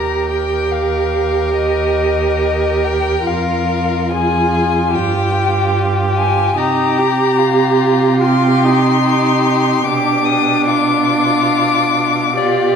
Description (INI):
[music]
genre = classical, slow romantic movement for string quartet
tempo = 72 BPM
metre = 4/4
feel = rubato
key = C minor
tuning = A4 = 440 Hz
[part]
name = rich violin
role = melody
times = 0.0-12.8 s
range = D5 to Eb6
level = -18 LUFS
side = left 8 dB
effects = none
[part]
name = warm violin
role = second line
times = 0.0-12.8 s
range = F4 to Bb4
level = -20 LUFS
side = left 1 dB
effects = none
[part]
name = warm viola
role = accompaniment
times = 0.0-12.8 s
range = D4 to G4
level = -17 LUFS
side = right 4 dB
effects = none
[part]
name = rich cello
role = bass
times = 0.0-12.8 s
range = Eb2 to C3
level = -18 LUFS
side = right 2 dB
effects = none
[sound]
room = wet recital hall reverb, RT60 1.4 s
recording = minimal, uncompressed stereo recording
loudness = -12 LUFS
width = side -7 dB against mid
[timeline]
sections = 0.0-12.8 A section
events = none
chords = 0.0 Eb; 3.3 Fm; 4.9 Fmadd9/G; 6.6 Cm; 9.8 G7/B